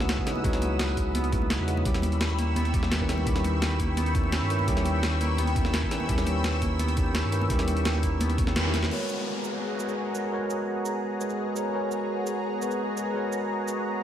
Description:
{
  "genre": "liquid drum and bass",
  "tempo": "170 BPM",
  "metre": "4/4",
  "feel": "straight",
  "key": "unclear",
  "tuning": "A4 = 440 Hz",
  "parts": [
    { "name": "tine electric piano", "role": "accompaniment", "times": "0.0-14.0 s", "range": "C#3 to B5", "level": "-31 LUFS", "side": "equal", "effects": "wide subtle chorus, diffuse ambient delay" },
    { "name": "lush unison pad", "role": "sustained chords", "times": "0.0-14.0 s", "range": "B3 to E6", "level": "-32 LUFS", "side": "left 1 dB", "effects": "chorus, phaser, sidechain pumping" },
    { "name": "Celtic harp", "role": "arpeggios", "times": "0.0-11.5 s", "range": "F#3 to C#4", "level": "-34 LUFS", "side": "right 1 dB", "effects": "vintage 12-bit sampler grit, diffuse ambient delay" },
    { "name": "warm sub bass", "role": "bass", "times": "0.0-8.9 s", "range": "C#2 to G2", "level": "-28 LUFS", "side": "equal", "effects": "none" },
    { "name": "breakbeat sampler-style drum kit", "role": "drums", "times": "0.0-13.8 s", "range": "crash cymbal, hi-hat, shaker, snare drum", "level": "-32 LUFS", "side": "equal", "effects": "none" },
    { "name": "congas", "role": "percussion", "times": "0.0-8.9 s", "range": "none", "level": "-38 LUFS", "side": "equal", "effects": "none" },
    { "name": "electronic kick drum", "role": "drums", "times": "0.2-8.5 s", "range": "none", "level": "-29 LUFS", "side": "equal", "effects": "none" },
    { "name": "downlifter", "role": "sound effects", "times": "8.9-11.7 s", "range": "none", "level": "-37 LUFS", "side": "left 2 dB", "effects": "none" }
  ],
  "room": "moderate plate reverb, RT60 1.9 s",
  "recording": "dreamy mix soaked in reverb",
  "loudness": "-24 LUFS",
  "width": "side -10 dB against mid",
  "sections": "0.0-8.9 A section; 8.9-14.0 B section",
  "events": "kick drops out 8.6-8.9; band accent 8.6; drum fill 8.7",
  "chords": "0.0 C#m11; 1.9 D#7b9b13; 8.9 G#m11"
}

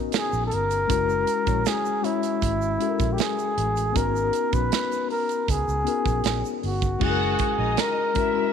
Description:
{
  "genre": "lush 1970s-style soul",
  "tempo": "78 BPM",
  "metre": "4/4",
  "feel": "straight",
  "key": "unclear",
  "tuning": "A4 = 440 Hz",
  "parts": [
    { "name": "reed electric piano", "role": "accompaniment", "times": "0.0-8.5 s", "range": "G#3 to C#5", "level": "-28 LUFS", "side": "left 13 dB", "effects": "fast tremolo" },
    { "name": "modern studio drum kit", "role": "drums", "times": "0.1-8.3 s", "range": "crash cymbal, hi-hat, kick drum, snare drum", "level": "-28 LUFS", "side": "right 5 dB", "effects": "none" },
    { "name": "tube shaker", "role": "percussion", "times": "0.1-7.0 s", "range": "none", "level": "-45 LUFS", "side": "right 17 dB", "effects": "none" },
    { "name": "breathy flugelhorn", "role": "melody", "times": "0.2-8.5 s", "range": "E4 to B4", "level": "-25 LUFS", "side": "equal", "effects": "none" },
    { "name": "vintage muted fingered electric bass", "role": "bass", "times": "0.3-7.8 s", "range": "F#1 to C#2", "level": "-28 LUFS", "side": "right 1 dB", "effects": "none" },
    { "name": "warm studio violin section", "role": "second line", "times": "7.0-8.5 s", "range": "D#4 to F#5", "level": "-29 LUFS", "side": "left 2 dB", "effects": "none" }
  ],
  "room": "light reverb, studio ambience",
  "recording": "1960s-style stereo with parts hard left and right",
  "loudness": "-21 LUFS",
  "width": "side -7 dB against mid",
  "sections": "0.0-7.0 A section; 7.0-8.5 B section",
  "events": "none",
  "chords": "0.0 G#m11; 0.9 F#9; 4.0 G#m11; 7.0 F#9"
}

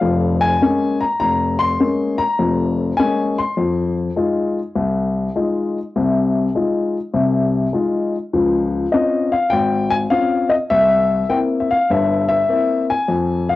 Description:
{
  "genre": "solo jazz",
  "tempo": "101 BPM",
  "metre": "4/4",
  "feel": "swing 67% on 8ths",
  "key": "F minor",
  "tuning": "A4 = 440 Hz",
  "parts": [
    { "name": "dark baby grand piano", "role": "solo", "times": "0.0-13.6 s", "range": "F1 to C6", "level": "-16 LUFS", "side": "left 2 dB", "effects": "cassette tape" }
  ],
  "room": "moderate studio reverb, RT60 0.6 s",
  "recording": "home recording on cassette",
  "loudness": "-16 LUFS",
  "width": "side -15 dB against mid",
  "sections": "0.0-13.6 A section",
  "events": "none",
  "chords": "0.0 Bbm7; 3.6 Fm7; 8.3 Dbmaj7; 10.7 C7"
}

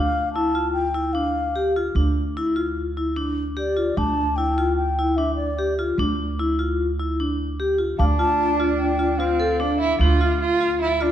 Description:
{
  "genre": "contemporary instrumental, chamber music in an uneven meter",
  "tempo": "149 BPM",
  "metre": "5/4",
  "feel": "straight",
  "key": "D minor",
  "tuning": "A4 = 438 Hz",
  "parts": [
    { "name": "mellow baroque flute", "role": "melody", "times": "0.0-9.8 s", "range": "D5 to A5", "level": "-25 LUFS", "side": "left 2 dB", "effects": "none" },
    { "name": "vibraphone with medium hard mallets", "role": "arpeggios", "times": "0.0-11.1 s", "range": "D4 to A4", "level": "-23 LUFS", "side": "left 2 dB", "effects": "none" },
    { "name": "upright bass", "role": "bass", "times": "0.0-11.1 s", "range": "D2", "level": "-25 LUFS", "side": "right 1 dB", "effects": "none" },
    { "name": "clear cello", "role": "second line", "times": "8.0-11.1 s", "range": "C4 to F4", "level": "-22 LUFS", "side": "right 5 dB", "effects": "none" },
    { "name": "celesta", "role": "texture", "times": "8.0-8.4 s", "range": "A5", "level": "-32 LUFS", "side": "left 10 dB", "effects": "none" }
  ],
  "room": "moderate concert hall reverb, RT60 1.7 s",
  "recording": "dark, warm production",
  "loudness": "-20 LUFS",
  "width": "side -10 dB against mid",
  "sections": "0.0-8.0 A section; 8.0-11.1 B section",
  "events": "none",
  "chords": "0.0 Dm"
}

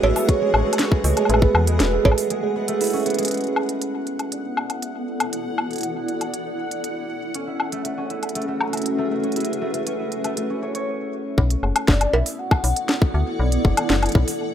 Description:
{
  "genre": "IDM",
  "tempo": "119 BPM",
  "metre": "4/4",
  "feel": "straight",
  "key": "B dorian",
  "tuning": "A4 = 440 Hz",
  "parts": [
    { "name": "warm velvety synth lead", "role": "melody", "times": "0.0-7.1, 11.9-14.2 s", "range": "B4 to F#5", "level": "-29 LUFS", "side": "equal", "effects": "chorus, tremolo, vintage 12-bit sampler grit, ping-pong delay" },
    { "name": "granular cloud pad", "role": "sustained chords", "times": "0.0-14.5 s", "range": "B3 to F#5", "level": "-28 LUFS", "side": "equal", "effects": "built-in reverb" },
    { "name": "concert harp", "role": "arpeggios", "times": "0.0-13.7 s", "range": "G#3 to C#5", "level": "-25 LUFS", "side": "right 3 dB", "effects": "ping-pong delay" },
    { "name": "metallic FM bass", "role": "bass", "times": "0.0-2.1, 11.4-14.2 s", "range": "E1 to E2", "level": "-20 LUFS", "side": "left 1 dB", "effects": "none" },
    { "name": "organic electronic drum kit", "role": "drums", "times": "0.0-14.4 s", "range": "cowbell, hi-hat, snare drum, woodblock", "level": "-24 LUFS", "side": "equal", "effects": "none" },
    { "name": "bubbling stepped-filter texture", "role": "texture", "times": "0.0-10.9 s", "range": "F#5", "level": "-37 LUFS", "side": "left 1 dB", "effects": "chorus, built-in reverb, sidechain pumping" },
    { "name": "electronic kick drum", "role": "drums", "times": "0.3-2.2, 11.4-14.3 s", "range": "none", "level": "-18 LUFS", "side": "left 1 dB", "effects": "none" }
  ],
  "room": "light reverb",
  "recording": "rough home demo mix",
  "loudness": "-19 LUFS",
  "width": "side -9 dB against mid",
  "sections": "0.0-3.3 A section; 3.3-11.4 B section; 11.4-14.5 A section",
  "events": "break 2.3-3.3; drum fill 3.1",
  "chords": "0.0 Amaj9; 3.3 Bm7; 7.3 F#m7; 11.4 Bm7"
}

